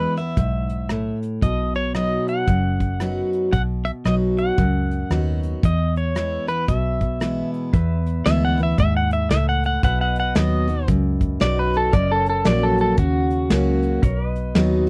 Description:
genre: honky-tonk and classic country.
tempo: 114 BPM.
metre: 4/4.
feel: swing 62% on 8ths.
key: E major.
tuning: A4 = 441 Hz.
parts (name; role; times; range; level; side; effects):
pedal steel guitar; melody; 0.0-14.0 s; F#4 to F#5; -26 LUFS; equal; none.
picked steel-string acoustic guitar; accompaniment; 0.0-14.9 s; E2 to F#4; -25 LUFS; equal; none.
vintage muted fingered electric bass; bass; 0.0-14.9 s; F#1 to E2; -25 LUFS; equal; none.
soft brush drum kit; drums; 0.2-14.7 s; hi-hat, kick drum, rim click, snare drum; -23 LUFS; equal; none.
pedal steel guitar; sustained chords; 7.7-14.9 s; A#4 to E5; -38 LUFS; equal; none.
room: little or no reverb.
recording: dry, close 1970s-style studio recording.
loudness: -21 LUFS.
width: mono.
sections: 0.0-7.7 A section; 7.7-14.9 B section.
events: pedal steel guitar solo 7.7-14.9.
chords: 0.0 E; 1.4 B; 5.6 E; 9.8 B; 11.9 F#; 14.0 B.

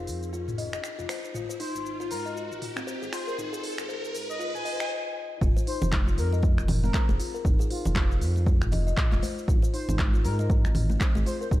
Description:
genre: afro house.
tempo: 118 BPM.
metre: 4/4.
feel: swing 59% on 16ths.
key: F minor.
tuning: A4 = 440 Hz.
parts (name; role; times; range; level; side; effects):
expressive synth lead; melody; 0.0-11.5 s; F4 to Ab5; -37 LUFS; left 1 dB; wide subtle chorus, cassette tape, tape echo.
smooth synth bass; bass; 0.0-11.6 s; F1 to Ab2; -28 LUFS; equal; sidechain pumping.
riser; sound effects; 0.2-4.9 s; none; -38 LUFS; equal; none.
deep house drum kit; drums; 0.1-11.6 s; cabasa, finger snaps, handclaps, hi-hat, toms; -34 LUFS; equal; none.
buzzing kalimba; arpeggios; 0.3-11.6 s; C4 to Eb5; -35 LUFS; left 4 dB; sidechain pumping, low-pass filter, tape echo.
electronic kick drum; drums; 5.4-11.6 s; none; -24 LUFS; equal; none.
congas; percussion; 5.6-11.2 s; none; -33 LUFS; equal; none.
room: digital ambience.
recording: dark, warm production, high-pass filter.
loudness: -24 LUFS.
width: side -15 dB against mid.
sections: 0.0-5.4 A section; 5.4-11.6 B section.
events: build-up 0.0-5.4; riser 0.2-4.9; stop 4.9-5.4; drop 5.4-11.6.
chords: 0.0 F7(no3); 1.3 N.C.; 5.4 F5; 9.5 Abadd9.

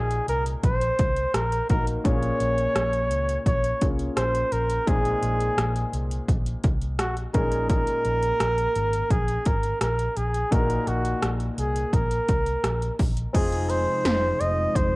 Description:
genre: 1980s-style pop.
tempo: 85 BPM.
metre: 4/4.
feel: straight.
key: unclear.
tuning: A4 = 440 Hz.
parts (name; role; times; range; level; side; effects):
warm flugelhorn; melody; 0.0-15.0 s; Gb4 to Eb5; -25 LUFS; equal; cassette tape.
warm grand piano; accompaniment; 0.0-15.0 s; Bb2 to Bb4; -32 LUFS; left 2 dB; cassette tape.
vintage muted fingered electric bass; bass; 0.0-15.0 s; F1 to Db2; -28 LUFS; equal; none.
80s electronic pad drums; drums; 0.1-14.9 s; crash cymbal, hi-hat, kick drum, rim click, snare drum; -25 LUFS; equal; overdrive.
warm analog pad; sustained chords; 13.3-15.0 s; C3 to Eb4; -30 LUFS; equal; chorus, cassette tape.
room: moderate spring reverb, RT60 1.5 s, digital ambience.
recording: home recording on cassette.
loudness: -22 LUFS.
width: side -22 dB against mid.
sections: 0.0-13.3 A section; 13.3-15.0 B section.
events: none.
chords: 0.0 Ebm/Bb; 2.0 Bbm7; 4.9 Ab/Bb; 7.3 Dbsus2; 10.5 Ebm/Bb; 13.3 Fm7.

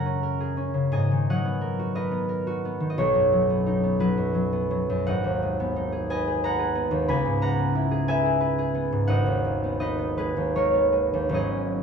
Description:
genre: classical, solo harp piece.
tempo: 49-61 BPM (dotted quarters).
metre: 6/8.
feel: rubato.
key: unclear.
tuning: A4 = 440 Hz.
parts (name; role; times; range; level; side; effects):
concert harp; solo; 0.0-11.8 s; G#1 to B5; -22 LUFS; equal; none.
room: wet stone room reverb, RT60 1.4 s.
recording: none.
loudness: -22 LUFS.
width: side -6 dB against mid.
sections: 0.0-11.8 A section.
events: none.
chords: 0.0 F#69; 0.9 G#m9; 3.0 Badd9; 5.1 G#m9; 7.1 C#m7; 9.1 G#m9.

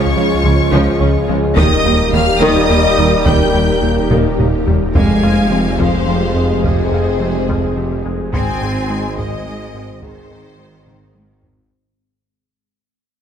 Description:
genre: cinematic, hybrid orchestral and electronic film score.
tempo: 71 BPM (dotted quarters).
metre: 6/8.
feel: straight.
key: F minor.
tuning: A4 = 440 Hz.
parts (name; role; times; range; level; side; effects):
rich symphonic violin section; melody; 0.0-11.4 s; C5 to G6; -23 LUFS; left 2 dB; low-pass filter.
warm symphonic violin section; second line; 0.0-11.4 s; Ab4 to Ab5; -23 LUFS; left 3 dB; none.
rich symphonic viola section; accompaniment; 0.0-11.7 s; Eb3 to C5; -22 LUFS; equal; low-pass filter.
clear trombone section; sustained chords; 0.0-11.4 s; Ab2 to Ab3; -23 LUFS; right 4 dB; low-pass filter.
dark French horn section; sustained chords; 0.0-11.4 s; Bb3 to Bb4; -23 LUFS; left 5 dB; low-pass filter.
ethereal airy pad; sustained chords; 0.0-11.7 s; Ab3 to Db5; -25 LUFS; left 1 dB; none.
tight sequenced synth; arpeggios; 0.0-11.6 s; Db3 to Ab4; -24 LUFS; left 2 dB; chorus, phaser, low-pass filter, ping-pong delay.
rubbery square bass; riff; 0.0-11.6 s; Db2 to Ab3; -20 LUFS; right 1 dB; low-pass filter.
detuned saw bass; bass; 0.0-11.7 s; Eb1 to Db2; -23 LUFS; left 1 dB; none.
clear symphonic double bass section; bass; 0.2-11.5 s; Ab1 to F2; -24 LUFS; right 3 dB; none.
mellow tuba; bass; 0.2-11.5 s; F1 to Eb2; -24 LUFS; right 4 dB; none.
warm symphonic cello section; bass; 0.2-11.4 s; C3 to C4; -22 LUFS; right 1 dB; none.
solo taiko drums; drums; 1.6-11.7 s; none; -20 LUFS; left 1 dB; none.
room: moderate scoring stage reverb, RT60 1.8 s.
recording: none.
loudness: -12 LUFS.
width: side -8 dB against mid.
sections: 0.0-5.0 A section; 5.0-11.7 B section.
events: drum fill 4.1-5.0, 10.9-11.7; fade-out 5.0-11.7; filter sweep 5.0-11.7.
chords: 0.0 Db; 1.6 Eb; 5.0 Fmadd9; 8.3 Ab.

